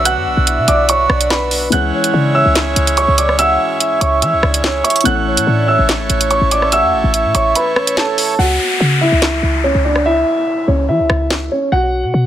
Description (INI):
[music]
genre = hip hop, drill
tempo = 144 BPM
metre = 4/4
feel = half-time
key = C# phrygian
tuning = A4 = 440 Hz
[part]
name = felt-muted upright piano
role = accompaniment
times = 0.0-8.4 s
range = D3 to C#5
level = -24 LUFS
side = left 6 dB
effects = low-pass filter
[part]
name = accordion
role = sustained chords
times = 0.0-8.4 s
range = G#3 to E5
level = -22 LUFS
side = right 4 dB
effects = none
[part]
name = short 808-style bass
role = bass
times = 0.0-12.3 s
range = G#1 to E3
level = -17 LUFS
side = equal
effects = none
[part]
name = dark concert grand piano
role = melody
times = 0.1-12.3 s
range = C#4 to F#6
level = -15 LUFS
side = right 1 dB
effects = low-pass filter
[part]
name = hollow clarinet-like synth lead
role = second line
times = 0.1-8.3 s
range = C#5 to F#5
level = -20 LUFS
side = right 2 dB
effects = chorus, digital delay
[part]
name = drill drum kit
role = drums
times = 0.1-11.4 s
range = handclaps, hi-hat, rim click, snare drum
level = -17 LUFS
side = right 1 dB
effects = none
[part]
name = downlifter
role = sound effects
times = 8.4-11.7 s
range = none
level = -21 LUFS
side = left 2 dB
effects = none
[sound]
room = light reverb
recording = dense, heavily limited modern master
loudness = -12 LUFS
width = side -11 dB against mid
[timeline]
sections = 0.0-8.4 A section; 8.4-12.3 B section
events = kick muted 7.6-8.4; hi-hats muted 8.4-12.3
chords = 0.0 Bmadd9; 1.7 C#m; 5.1 A; 8.4 C#m; 11.7 B5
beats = | 0.05 0.47 0.89 1.30 | 1.72 2.14 2.55 2.97 | 3.39 3.80 4.22 4.64 | 5.05 5.47 5.89 6.30 | 6.72 7.14 7.55 7.97 | 8.39 8.80 9.22 9.64 | 10.05 10.47 10.89 11.30 | 11.72 12.14